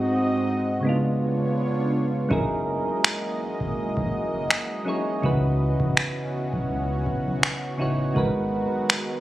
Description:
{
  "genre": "contemporary R&B",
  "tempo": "82 BPM",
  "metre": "4/4",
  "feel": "swing 54% on 16ths",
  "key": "unclear",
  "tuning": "A4 = 439 Hz",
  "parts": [
    { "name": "soft electric-piano-like synth keys", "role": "accompaniment", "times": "0.0-9.2 s", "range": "G#2 to C#5", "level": "-25 LUFS", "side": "equal", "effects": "chorus, tremolo, low-pass filter" },
    { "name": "lush unison pad", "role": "sustained chords", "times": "0.0-9.2 s", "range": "D#3 to D#5", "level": "-30 LUFS", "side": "equal", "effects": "chorus, low-pass filter" },
    { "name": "round analog bass", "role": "bass", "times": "2.3-8.8 s", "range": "E1 to C#2", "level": "-30 LUFS", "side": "equal", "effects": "none" },
    { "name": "booming analog drum machine", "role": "drums", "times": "2.3-9.1 s", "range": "finger snaps, kick drum", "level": "-23 LUFS", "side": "equal", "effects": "none" }
  ],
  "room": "light reverb, digital ambience",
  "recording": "recorded on a phone in the room, studio reverb",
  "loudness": "-22 LUFS",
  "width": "side -15 dB against mid",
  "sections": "0.0-2.3 A section; 2.3-9.2 B section",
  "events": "none",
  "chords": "0.0 G#7; 0.8 C#7b9; 2.3 F#13; 5.2 C#m11; 8.2 G#m7"
}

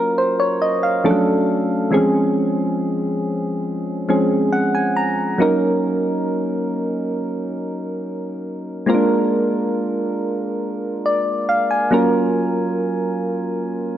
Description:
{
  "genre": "R&B",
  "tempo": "69 BPM",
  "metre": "4/4",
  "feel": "straight",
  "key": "Eb dorian",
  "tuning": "A4 = 441 Hz",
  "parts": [
    { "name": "soft electric-piano-like synth keys", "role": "solo", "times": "0.0-14.0 s", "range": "Fb3 to Bb5", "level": "-17 LUFS", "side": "equal", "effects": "chorus" }
  ],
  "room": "moderate plate reverb, RT60 2.5 s",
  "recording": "worn, warbling old tape, cassette tape, warbly pitch drift",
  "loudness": "-17 LUFS",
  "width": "side -11 dB against mid",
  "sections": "0.0-14.0 A section",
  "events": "synth keys fill 4.1-5.4",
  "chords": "0.0 Gbmaj7; 1.1 Dmaj7; 1.9 Dbmaj7; 5.4 Ebm7; 8.9 Bb7; 11.9 Gbmaj7"
}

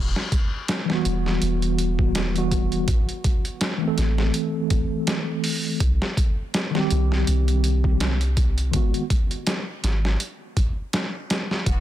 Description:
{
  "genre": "trip hop",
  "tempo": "82 BPM",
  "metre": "4/4",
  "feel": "swing 56% on 16ths",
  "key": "unclear",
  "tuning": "A4 = 435 Hz",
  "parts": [
    { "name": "soft 808-style bass", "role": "bass", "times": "0.0-11.8 s", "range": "E1 to C2", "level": "-22 LUFS", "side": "equal", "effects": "none" },
    { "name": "boom bap sampler-style drum kit", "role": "drums", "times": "0.2-11.8 s", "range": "hi-hat, kick drum, snare drum", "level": "-23 LUFS", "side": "equal", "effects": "none" },
    { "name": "mellow tine electric piano", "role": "accompaniment", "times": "0.9-9.0 s", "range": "Eb3 to A4", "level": "-25 LUFS", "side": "equal", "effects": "medium stereo tremolo, vintage 12-bit sampler grit, tape echo" },
    { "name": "bright studio string section", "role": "sustained chords", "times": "11.7-11.8 s", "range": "E3 to F#4", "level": "-41 LUFS", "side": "left 1 dB", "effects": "vintage 12-bit sampler grit" }
  ],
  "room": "digital ambience",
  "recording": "dense, heavily limited modern master",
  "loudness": "-20 LUFS",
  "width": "side -12 dB against mid",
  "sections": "0.0-11.8 A section",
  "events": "none",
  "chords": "0.0 Emadd9; 2.9 Am; 5.8 Cm; 8.7 G#m7"
}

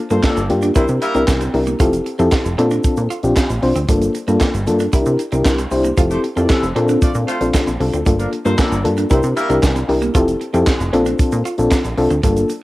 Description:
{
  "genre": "early-eighties boogie funk",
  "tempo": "115 BPM",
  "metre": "4/4",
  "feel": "straight",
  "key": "unclear",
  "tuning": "A4 = 440 Hz",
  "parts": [
    { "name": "dark horn section", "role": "second line", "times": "0.1-1.2, 6.1-9.6 s", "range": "F3 to E5", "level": "-25 LUFS", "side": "equal", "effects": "none" },
    { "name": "FM electric piano with tremolo", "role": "accompaniment", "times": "0.1-12.5 s", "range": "Bb3 to C5", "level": "-17 LUFS", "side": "left 2 dB", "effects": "none" },
    { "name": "clean electric guitar", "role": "riff", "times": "0.1-12.5 s", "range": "G3 to F4", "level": "-26 LUFS", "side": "right 4 dB", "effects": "lush chorus" },
    { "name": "plucky analog bass", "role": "bass", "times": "0.1-12.4 s", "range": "F1 to C3", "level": "-20 LUFS", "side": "right 1 dB", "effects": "none" },
    { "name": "tight funk drum kit", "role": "drums", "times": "0.1-12.6 s", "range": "handclaps, hi-hat, kick drum, snare drum", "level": "-18 LUFS", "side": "right 1 dB", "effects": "none" },
    { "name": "egg shaker", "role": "percussion", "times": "0.1-12.6 s", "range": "none", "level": "-37 LUFS", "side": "right 7 dB", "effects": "none" }
  ],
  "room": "light reverb, small room ambience",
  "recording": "home recording on cassette",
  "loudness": "-14 LUFS",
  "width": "side -18 dB against mid",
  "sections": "0.0-12.6 A section",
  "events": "none",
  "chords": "0.0 Gm9; 0.8 C7; 1.8 Fmaj9; 2.6 Bbmaj9; 3.9 Gm9; 4.9 C7; 6.0 Fmaj9; 6.8 Bbmaj9; 8.1 Gm9; 9.1 C7; 10.1 Fmaj9; 10.9 Bbmaj9"
}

